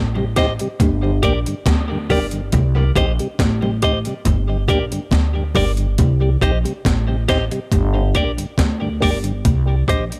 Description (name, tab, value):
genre	dub reggae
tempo	69 BPM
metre	4/4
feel	straight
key	C dorian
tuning	A4 = 441 Hz
part	upright bass	bass	0.0-10.1 s	G1 to D2	-21 LUFS	equal	none
part	mellow tonewheel organ	accompaniment	0.2-9.3 s	G2 to G4	-28 LUFS	equal	slow rotary speaker, tape echo
part	congas	percussion	0.2-6.2 s	none	-30 LUFS	equal	none
part	clean electric guitar	accompaniment	0.4-10.0 s	G4 to Eb5	-26 LUFS	equal	tape echo
part	breakbeat sampler-style drum kit	drums	0.4-10.2 s	hi-hat, kick drum, snare drum	-22 LUFS	equal	overdrive
room	light reverb, digital ambience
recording	none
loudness	-18 LUFS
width	mono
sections	0.0-10.2 A section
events	part muted 6.0-10.2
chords	0.0 Cm; 0.8 Gm; 2.5 Cm; 4.3 Gm; 6.0 Cm; 7.7 Gm; 9.4 Cm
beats	0.80 1.66 | 2.53 3.39 4.26 5.12 | 5.99 6.85 7.72 8.58 | 9.45